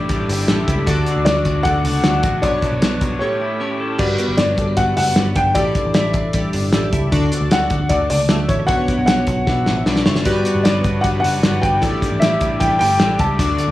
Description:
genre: jangly indie pop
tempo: 153 BPM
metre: 4/4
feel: straight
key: unclear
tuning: A4 = 440 Hz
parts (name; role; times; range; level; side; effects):
- dark upright piano; melody; 0.0-13.2 s; C#5 to A5; -20 LUFS; left 1 dB; slapback echo
- chorused retro synth keys; accompaniment; 0.0-13.7 s; D4 to E5; -24 LUFS; equal; none
- raw garage guitar; accompaniment; 0.0-4.0, 10.2-13.7 s; A2 to D5; -26 LUFS; equal; overdrive
- twelve-string electric guitar; arpeggios; 0.0-13.7 s; G2 to C#5; -23 LUFS; left 1 dB; ensemble chorus, slapback echo
- vintage muted picked electric bass; bass; 0.0-13.7 s; F#1 to D2; -22 LUFS; equal; none
- cloth-damped thuddy drum kit; drums; 0.1-13.7 s; crash cymbal, hi-hat, kick drum, snare drum; -20 LUFS; equal; none
room: moderate studio reverb, RT60 0.8 s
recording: studio reverb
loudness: -15 LUFS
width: side -15 dB against mid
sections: 0.0-4.0 A section; 4.0-13.7 A section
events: break 3.2-4.0; drum fill 9.5-10.3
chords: 0.0 A7sus4; 0.9 D; 2.4 Bmadd9; 3.2 A7; 4.0 Gmaj7; 5.6 A7sus4; 7.1 D; 8.7 Bmadd9; 10.3 Gmaj7; 11.8 A7sus4

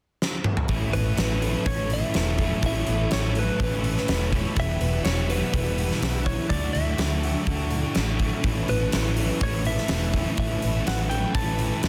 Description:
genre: rock, shoegaze and dream pop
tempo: 124 BPM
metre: 4/4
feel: straight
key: A mixolydian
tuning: A4 = 440 Hz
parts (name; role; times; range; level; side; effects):
- huge arena drum kit; drums; 0.2-11.9 s; hi-hat, kick drum, snare drum, toms; -29 LUFS; equal; none
- soft string machine; sustained chords; 0.7-11.9 s; G3 to E6; -41 LUFS; equal; none
- fingerpicked twelve-string acoustic guitar; arpeggios; 0.7-11.9 s; E3 to A4; -38 LUFS; equal; none
- overdriven semi-hollow guitar; riff; 0.7-11.9 s; E2 to F#4; -35 LUFS; equal; reverse reverb
- thick fuzz guitar; riff; 0.7-11.9 s; E2 to D4; -33 LUFS; equal; distortion, analog chorus
- vintage muted fingered electric bass; bass; 0.7-11.9 s; E1 to D2; -30 LUFS; equal; none
- direct-recorded clean electric guitar; melody; 0.9-11.9 s; B4 to A5; -34 LUFS; equal; slapback echo
room: studio ambience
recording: dense, heavily limited modern master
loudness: -25 LUFS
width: mono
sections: 0.7-11.9 A section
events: drum fill 0.2-0.7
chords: 0.0 N.C.; 0.7 Aadd9; 4.6 Emadd9; 6.5 Dadd9; 8.4 Aadd9

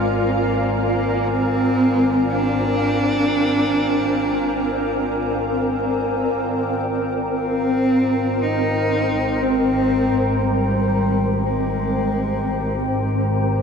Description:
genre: ambient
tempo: free time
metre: none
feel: none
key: Ab lydian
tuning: A4 = 440 Hz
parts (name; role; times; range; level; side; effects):
- dark cello; melody; 0.0-13.5 s; G3 to Eb4; -22 LUFS; equal; diffuse ambient delay
- shimmering ambient pad; sustained chords; 0.0-13.6 s; C4 to G5; -21 LUFS; equal; chorus, built-in reverb
- dark symphonic double bass section; bass; 0.0-13.6 s; Ab1; -26 LUFS; equal; none
- glass harmonica; texture; 0.0-13.6 s; G5 to Ab5; -30 LUFS; left 2 dB; stereo widening
- organ-like drone; drone; 9.3-13.6 s; C4 to G4; -37 LUFS; left 1 dB; none
room: wet cathedral reverb, RT60 7.7 s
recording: in a vast, echoing space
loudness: -18 LUFS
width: side -6 dB against mid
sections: 0.0-6.4 A section; 6.4-13.6 B section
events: filter sweep on ambient pad 0.0-6.4, 6.4-13.6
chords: 0.0 Bb/Ab; 6.4 Abmaj7

